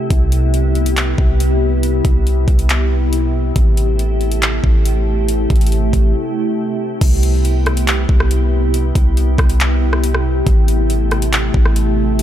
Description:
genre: hip hop, atmospheric cloud-rap.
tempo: 139 BPM.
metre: 4/4.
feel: half-time.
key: C major.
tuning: A4 = 435 Hz.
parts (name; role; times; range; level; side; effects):
glassy FM pad; sustained chords; 0.0-12.2 s; C3 to G4; -19 LUFS; equal; ensemble chorus, built-in reverb, sidechain pumping.
warm 808-style bass; bass; 0.1-12.2 s; A1 to C2; -15 LUFS; equal; none.
trap drum kit; drums; 0.1-12.2 s; crash cymbal, handclaps, hi-hat, kick drum, rim click; -16 LUFS; equal; none.
room: digital ambience.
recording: none.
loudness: -13 LUFS.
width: side -11 dB against mid.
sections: 0.0-7.0 A section; 7.0-12.2 B section.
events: break 6.1-7.0.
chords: 0.1 Cmaj7; 3.6 Am7; 7.0 Cmaj7; 10.5 Am7.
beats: | 0.11 0.54 0.97 1.40 | 1.83 2.26 2.70 3.13 | 3.56 3.99 4.42 4.85 | 5.29 5.72 6.15 6.58 | 7.01 7.44 7.88 8.31 | 8.74 9.17 9.60 10.03 | 10.46 10.90 11.33 11.76 | 12.19.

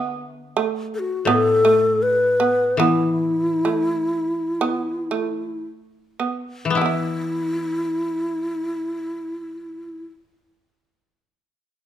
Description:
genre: japanese traditional, Japanese chamber music.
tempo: 52-87 BPM.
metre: 4/4.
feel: rubato.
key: unclear.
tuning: A4 = 440 Hz.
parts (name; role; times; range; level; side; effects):
shamisen; second line; 0.0-10.1 s; E3 to E4; -24 LUFS; right 6 dB; none.
koto; accompaniment; 0.0-10.0 s; A2 to E4; -26 LUFS; left 4 dB; none.
breathy mellow long shakuhachi; melody; 0.9-10.0 s; E4 to B4; -21 LUFS; left 1 dB; none.
room: moderate recital hall reverb, RT60 1.3 s.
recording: none.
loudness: -19 LUFS.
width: side -11 dB against mid.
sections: 0.0-6.8 A section; 6.8-11.1 B section.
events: slowing down 0.0-6.8.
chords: none.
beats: 0.57 1.28 2.02 | 2.80 3.65 4.60 5.64 | 6.77 7.87 8.92 10.01.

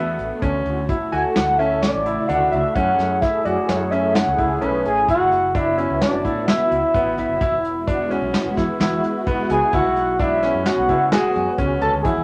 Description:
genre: progressive instrumental, band music in an uneven meter.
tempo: 129 BPM.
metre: 5/4.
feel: straight.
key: unclear.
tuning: A4 = 440 Hz.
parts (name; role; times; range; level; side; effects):
pulse-width lead; melody; 0.0-12.2 s; B4 to A5; -24 LUFS; equal; chorus.
analog string pad; accompaniment; 0.0-12.1 s; C#3 to A4; -28 LUFS; equal; ensemble chorus.
bright concert grand piano; arpeggios; 0.0-12.2 s; B3 to F#4; -26 LUFS; equal; none.
mellow fretless electric bass; bass; 0.0-12.2 s; E1 to C#3; -31 LUFS; equal; none.
vintage brush drum kit; drums; 0.2-12.2 s; hi-hat, kick drum, snare drum; -26 LUFS; equal; none.
mellow flugelhorn; second line; 4.9-12.2 s; D4 to A4; -25 LUFS; equal; none.
room: wet small room reverb, RT60 0.6 s.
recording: none.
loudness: -20 LUFS.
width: mono.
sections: 0.0-5.1 A section; 5.1-12.2 B section.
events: analog synth lead solo 0.0-5.1.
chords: 0.4 Dmaj7; 2.8 F#m7; 5.1 A6; 7.4 Eadd9; 9.7 C#7sus4.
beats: | 0.42 0.89 1.36 1.82 2.29 | 2.76 3.22 3.69 4.15 4.62 | 5.08 5.55 6.01 6.48 6.95 | 7.41 7.87 8.34 8.80 9.27 | 9.73 10.20 10.66 11.12 11.59 | 12.05.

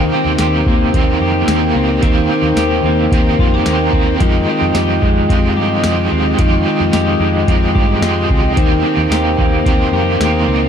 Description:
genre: dream pop.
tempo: 110 BPM.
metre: 4/4.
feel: straight.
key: F minor.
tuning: A4 = 440 Hz.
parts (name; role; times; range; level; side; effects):
crunchy overdriven guitar; accompaniment; 0.0-10.7 s; Eb3 to G4; -19 LUFS; right 3 dB; tremolo, wide subtle chorus.
mellow tonewheel organ; sustained chords; 0.0-10.7 s; Ab3 to G5; -19 LUFS; left 1 dB; slow rotary speaker.
electric guitar at the edge of break-up; arpeggios; 0.0-10.7 s; Eb3 to G4; -18 LUFS; left 1 dB; wide subtle chorus, digital delay.
vintage muted fingered electric bass; bass; 0.0-10.7 s; Db2 to G2; -19 LUFS; equal; none.
booming analog drum machine; drums; 0.4-10.3 s; hi-hat, kick drum, snare drum, tambourine; -16 LUFS; equal; none.
room: light reverb, digital ambience.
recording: dark, warm production.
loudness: -11 LUFS.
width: side -8 dB against mid.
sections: 0.0-10.7 A section.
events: none.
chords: 0.0 Cm7; 4.2 Fm9; 8.6 Cm7.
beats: 0.39 0.93 1.48 | 2.02 2.57 3.11 3.66 | 4.20 4.75 5.29 5.84 | 6.38 6.93 7.48 8.02 | 8.57 9.11 9.66 10.20.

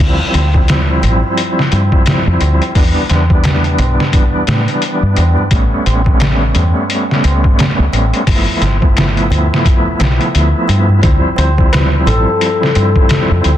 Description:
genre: trip hop.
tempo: 87 BPM.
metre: 4/4.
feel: swing 59% on 16ths.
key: D dorian.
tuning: A4 = 440 Hz.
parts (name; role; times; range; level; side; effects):
bright tonewheel organ; accompaniment; 0.0-13.6 s; E3 to E4; -16 LUFS; equal; fast rotary speaker, tremolo, tape echo.
deep dub fingered electric bass; bass; 0.0-13.6 s; G1 to A2; -13 LUFS; equal; none.
trip hop sampler-style drum kit; drums; 0.3-13.6 s; hi-hat, kick drum, snare drum; -14 LUFS; equal; overdrive, vintage 12-bit sampler grit.
tabla; percussion; 0.3-13.6 s; none; -24 LUFS; right 2 dB; none.
cimbalom; melody; 11.4-13.6 s; A4 to C5; -17 LUFS; left 4 dB; tape echo.
room: little or no reverb.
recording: dense, heavily limited modern master.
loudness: -10 LUFS.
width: side -11 dB against mid.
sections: 0.0-13.6 A section.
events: none.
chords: 0.0 Dm11; 2.8 Em7; 5.5 A9; 8.3 G13; 11.0 Dm11.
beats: | 0.00 0.69 1.38 2.06 | 2.75 3.44 4.13 4.82 | 5.51 6.20 6.89 7.58 | 8.27 8.96 9.65 10.34 | 11.03 11.72 12.41 13.10.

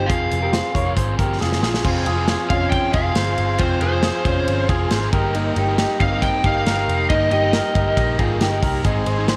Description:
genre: jangly indie pop.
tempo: 137 BPM.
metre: 4/4.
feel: straight.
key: unclear.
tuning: A4 = 440 Hz.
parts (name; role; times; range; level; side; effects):
lead guitar through a small cranked amp; melody; 0.0-8.2 s; C5 to G5; -25 LUFS; equal; overdrive.
crunchy overdriven guitar; accompaniment; 0.0-9.4 s; F3 to Bb4; -30 LUFS; equal; none.
electric guitar through a small old amp; arpeggios; 0.0-9.4 s; Bb3 to Db5; -26 LUFS; equal; slapback echo.
vintage muted picked electric bass; bass; 0.0-9.3 s; F1 to C2; -25 LUFS; equal; none.
modern studio drum kit; drums; 0.1-9.4 s; crash cymbal, hi-hat, kick drum, ride cymbal, snare drum; -25 LUFS; equal; none.
combo organ; accompaniment; 1.8-9.4 s; Eb4 to C5; -32 LUFS; equal; none.
room: moderate plate reverb, RT60 2.0 s.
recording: none.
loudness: -19 LUFS.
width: mono.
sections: 0.0-1.8 A section; 1.8-9.4 B section.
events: drum fill 1.4-1.8.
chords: 0.0 Fm; 5.1 Eb.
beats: | 0.10 0.54 0.97 1.41 | 1.85 2.29 2.72 3.16 | 3.60 4.04 4.47 4.91 | 5.35 5.79 6.22 6.66 | 7.10 7.53 7.97 8.41 | 8.85 9.29.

